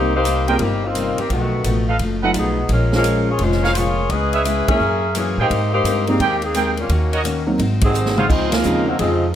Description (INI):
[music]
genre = jazz, big band swing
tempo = 171 BPM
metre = 4/4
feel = swing 65% on 8ths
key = Ab major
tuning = A4 = 440 Hz
[part]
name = dark saxophone section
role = melody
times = 0.0-9.3 s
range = D#3 to Fb5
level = -20 LUFS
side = left 2 dB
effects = none
[part]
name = picked steel-string acoustic guitar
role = accompaniment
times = 0.0-9.3 s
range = Bb2 to C5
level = -26 LUFS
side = left 5 dB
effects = none
[part]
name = warm grand piano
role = accompaniment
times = 0.0-8.9 s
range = F3 to C5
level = -22 LUFS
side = right 2 dB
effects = none
[part]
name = upright bass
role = bass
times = 0.0-9.3 s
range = F1 to A2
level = -21 LUFS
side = equal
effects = none
[part]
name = swinging big-band drum kit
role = drums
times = 0.3-9.1 s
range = crash cymbal, hi-hat, kick drum, ride cymbal, snare drum, toms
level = -25 LUFS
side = equal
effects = none
[part]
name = warm trumpet section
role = stabs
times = 0.5-8.3 s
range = F4 to G5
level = -22 LUFS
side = right 4 dB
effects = none
[part]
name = clear trombone section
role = second line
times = 7.8-9.3 s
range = C3 to C4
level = -23 LUFS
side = right 4 dB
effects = none
[sound]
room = light reverb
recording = none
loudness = -16 LUFS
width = side -10 dB against mid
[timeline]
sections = 0.0-8.3 A section; 8.3-9.3 B section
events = band accent 4.6, 7.8, 8.5; drum fill 8.0-8.3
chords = 0.0 Cm7; 1.3 B7#11; 2.7 Bbm7; 4.1 Dbm7; 4.8 Gb9; 5.5 Abmaj9; 6.9 Ebm7; 7.6 Ab7; 8.3 Dbmaj9